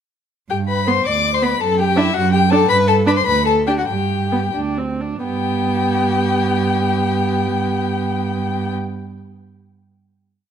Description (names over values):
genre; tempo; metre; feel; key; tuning
quick classical-period movement for string quartet; 84-111 BPM (dotted quarters); 6/8; rubato; G major; A4 = 439 Hz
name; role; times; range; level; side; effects
rich violin; melody; 0.5-8.7 s; E5 to D6; -20 LUFS; left 7 dB; none
warm violin; second line; 0.5-8.7 s; E4 to D5; -22 LUFS; left 3 dB; none
warm cello; bass; 0.5-8.7 s; D2 to G2; -21 LUFS; right 5 dB; none
warm viola; accompaniment; 0.9-8.7 s; B3 to D4; -22 LUFS; right 4 dB; none
room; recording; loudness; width
moderate recital hall reverb, RT60 1.6 s; none; -15 LUFS; side -8 dB against mid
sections
0.5-5.2 variation; 5.2-8.0 final chord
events
slowing down 2.1-5.2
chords
0.5 G; 1.6 D/F#; 2.7 G5; 3.3 D6; 3.9 G5; 5.2 G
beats
| 0.50 1.06 | 1.60 2.15 | 2.69 3.27 | 3.88 4.55 | 5.25 5.92 | 6.60 7.29